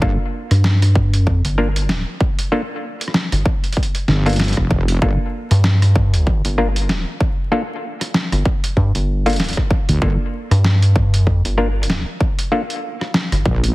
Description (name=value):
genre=glitch hop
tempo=96 BPM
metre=4/4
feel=swing 58% on 16ths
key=G minor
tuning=A4 = 441 Hz
part: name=muted clav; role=stabs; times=0.0-12.6 s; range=Bb3 to Bb4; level=-22 LUFS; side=left 1 dB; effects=sidechain pumping, ping-pong delay
part: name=wobble bass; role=bass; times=0.0-0.2, 4.1-5.2, 9.9-13.7 s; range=F1 to D2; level=-16 LUFS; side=equal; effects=chorus
part: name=electronic kick drum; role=drums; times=0.0-13.6 s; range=none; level=-19 LUFS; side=equal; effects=overdrive
part: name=rubbery square bass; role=bass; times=0.5-13.4 s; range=G1 to G2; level=-15 LUFS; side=equal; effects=none
part: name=boom bap sampler-style drum kit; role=drums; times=0.5-13.7 s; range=hi-hat, rim click, snare drum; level=-21 LUFS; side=equal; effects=overdrive
room=digital ambience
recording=heavily compressed radio sound, multiband compression, vinyl crackle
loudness=-15 LUFS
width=side -19 dB against mid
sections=0.0-13.7 A section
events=none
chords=0.0 Gm7